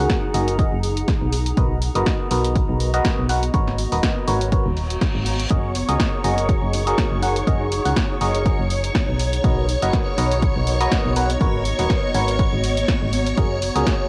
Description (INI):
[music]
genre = piano house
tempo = 122 BPM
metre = 4/4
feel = swing 55% on 16ths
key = F# major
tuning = A4 = 440 Hz
[part]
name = barking FM electric piano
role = riff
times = 0.0-14.1 s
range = F#4 to F#5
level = -27 LUFS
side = equal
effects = phaser, cassette tape, sidechain pumping, low-pass filter
[part]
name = solid FM bass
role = bass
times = 0.0-13.8 s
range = D#1 to C#2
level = -25 LUFS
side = equal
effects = sidechain pumping
[part]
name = granular cloud pad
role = texture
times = 0.0-14.1 s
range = B3 to A#5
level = -31 LUFS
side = equal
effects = built-in reverb, sidechain pumping
[part]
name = electronic kick drum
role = drums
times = 0.1-14.0 s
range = none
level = -24 LUFS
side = equal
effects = none
[part]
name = punchy analog drum machine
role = drums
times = 0.1-14.0 s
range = hi-hat, snare drum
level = -30 LUFS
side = equal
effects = none
[part]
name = reverse cymbal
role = sound effects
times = 4.8-5.5 s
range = none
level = -35 LUFS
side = equal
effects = none
[part]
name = string machine, violins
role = sustained chords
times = 5.5-14.1 s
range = C#5 to C#6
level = -29 LUFS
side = equal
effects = ensemble chorus, sidechain pumping
[sound]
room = light reverb, digital ambience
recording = home recording on cassette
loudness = -20 LUFS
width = mono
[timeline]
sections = 0.0-14.1 A section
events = reverse cymbal 4.8-5.5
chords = 0.0 F#69; 1.3 Bmaj7; 3.5 G#m11; 5.5 F#69; 11.4 G#m11; 13.4 F#69